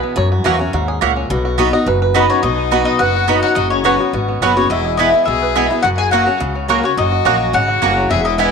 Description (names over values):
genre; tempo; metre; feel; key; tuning
bluegrass; 212 BPM; 4/4; straight; unclear; A4 = 440 Hz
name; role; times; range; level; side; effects
bluegrass banjo; melody; 0.0-8.5 s; B3 to D#5; -23 LUFS; right 3 dB; none
picked swing-style acoustic guitar; accompaniment; 0.0-8.5 s; E2 to F#4; -18 LUFS; left 1 dB; none
upright bass; bass; 0.2-8.5 s; E1 to F#2; -21 LUFS; left 1 dB; none
mandolin; stabs; 0.4-8.5 s; A#3 to B5; -20 LUFS; right 10 dB; none
mandolin; melody; 2.2-8.5 s; A#4 to G#5; -18 LUFS; left 2 dB; slapback echo
clear fiddle; second line; 2.2-8.5 s; A#3 to G#4; -22 LUFS; left 14 dB; none
room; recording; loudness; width
light reverb, small room ambience; 1960s-style stereo with parts hard left and right; -13 LUFS; side -5 dB against mid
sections
0.0-2.4 A section; 2.4-8.5 B section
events
five-string banjo solo 0.0-2.4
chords
0.2 F#7; 1.3 B; 3.6 F#sus4; 4.7 E; 5.8 F#